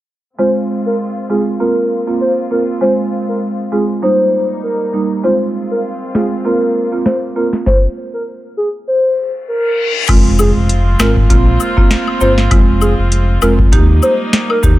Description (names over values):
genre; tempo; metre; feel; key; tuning
dancehall; 99 BPM; 4/4; swing 56% on 16ths; F minor; A4 = 439 Hz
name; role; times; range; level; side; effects
hollow clarinet-like synth lead; melody; 0.4-14.6 s; Ab4 to C5; -16 LUFS; left 1 dB; chorus, tape echo
buzzing marimba with medium hard mallets; accompaniment; 0.4-14.8 s; G3 to G4; -18 LUFS; right 4 dB; none
warm studio string section; sustained chords; 0.4-14.8 s; G3 to F4; -24 LUFS; left 1 dB; sidechain pumping
booming analog drum machine; drums; 6.1-14.8 s; crash cymbal, hi-hat, kick drum, snare drum; -12 LUFS; equal; none
reverse cymbal and impact; sound effects; 9.6-12.5 s; none; -21 LUFS; left 2 dB; none
sub bass with octave; bass; 10.1-14.8 s; F1 to Eb2; -13 LUFS; equal; none
woodblock and cabasa; percussion; 10.1-14.8 s; none; -23 LUFS; left 7 dB; none
room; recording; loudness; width
digital ambience; low-pass filter; -11 LUFS; side -15 dB against mid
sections
0.4-10.1 A section; 10.1-14.8 B section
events
filter sweep 0.4-10.1; reverse cymbal 9.6-10.1; impact 10.1-12.5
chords
0.4 Fm; 1.6 Bbsus2; 2.8 Fm; 4.0 Eb; 5.2 Fm; 6.5 Bbsus2; 7.7 N.C.; 10.1 Fm; 11.3 Bbsus2; 12.5 Fm; 13.7 Eb